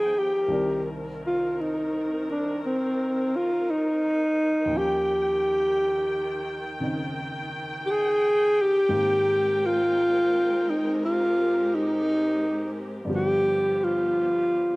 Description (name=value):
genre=jazz ballad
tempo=57 BPM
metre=4/4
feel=swing 67% on 8ths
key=C minor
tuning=A4 = 441 Hz
part: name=breathy alto saxophone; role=melody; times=0.0-14.8 s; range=C4 to Ab4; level=-22 LUFS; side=equal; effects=slapback echo
part: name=dark baby grand piano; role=accompaniment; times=0.0-14.8 s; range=C2 to G5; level=-34 LUFS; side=equal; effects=none
part: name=dark studio string section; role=sustained chords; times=0.0-14.8 s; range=Eb3 to G5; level=-34 LUFS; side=equal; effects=none
room=little or no reverb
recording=recorded outdoors, with no room sound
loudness=-22 LUFS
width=side -23 dB against mid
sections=0.0-14.8 A section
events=none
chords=0.5 Cm7; 4.7 Eb7; 8.9 Abmaj9; 13.1 G7